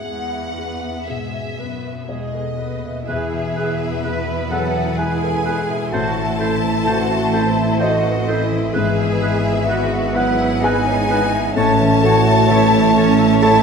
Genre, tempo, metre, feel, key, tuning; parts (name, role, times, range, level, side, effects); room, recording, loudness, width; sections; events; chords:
cinematic; 58-66 BPM; 3/4; rubato; E major; A4 = 440 Hz
rich studio violin section; melody; 0.0-13.6 s; B4 to F#5; -28 LUFS; left 4 dB
dark grand piano; accompaniment; 0.0-13.6 s; E2 to A5; -24 LUFS; left 2 dB
warm studio viola section; accompaniment; 0.0-13.6 s; E3 to B4; -27 LUFS; right 6 dB
concert harp; arpeggios; 0.0-13.6 s; E2 to E6; -26 LUFS; left 7 dB
rich studio cello section; bass; 0.1-13.6 s; D#2 to B4; -25 LUFS; right 3 dB
mellow hollow concert flute; second line; 2.1-13.6 s; D#5 to A5; -24 LUFS; equal
rich studio violin section; second line; 2.1-13.6 s; D#5 to A5; -25 LUFS; left 2 dB
mellow French horn section; sustained chords; 2.1-13.6 s; B2 to A3; -23 LUFS; equal
dark clarinet; second line; 3.1-13.6 s; G#4 to A4; -28 LUFS; left 1 dB
warm oboe; second line; 3.1-13.6 s; B4 to C#5; -29 LUFS; right 4 dB
rich studio double bass section; bass; 3.1-13.6 s; G#1 to E2; -23 LUFS; right 2 dB
moderate scoring stage reverb, RT60 1.7 s; minimal, uncompressed stereo recording; -15 LUFS; side -6 dB against mid
0.0-3.1 A section; 3.1-13.6 A section
0.1 E; 5.9 Am; 8.8 E/G#; 11.6 A